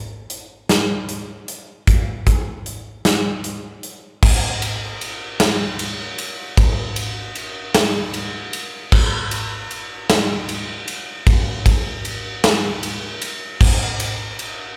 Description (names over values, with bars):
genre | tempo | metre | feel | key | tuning
rock | 51 BPM (dotted quarters) | 6/8 | straight | none | none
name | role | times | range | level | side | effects
big rock drum kit | drums | 0.3-14.6 s | crash cymbal, hi-hat, kick drum, ride cymbal, snare drum | -20 LUFS | equal | none
room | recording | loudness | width
moderate recital hall reverb, RT60 1.2 s | recorded in a church or concert hall | -20 LUFS | mono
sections
0.0-4.2 A section; 4.2-14.8 B section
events
none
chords
none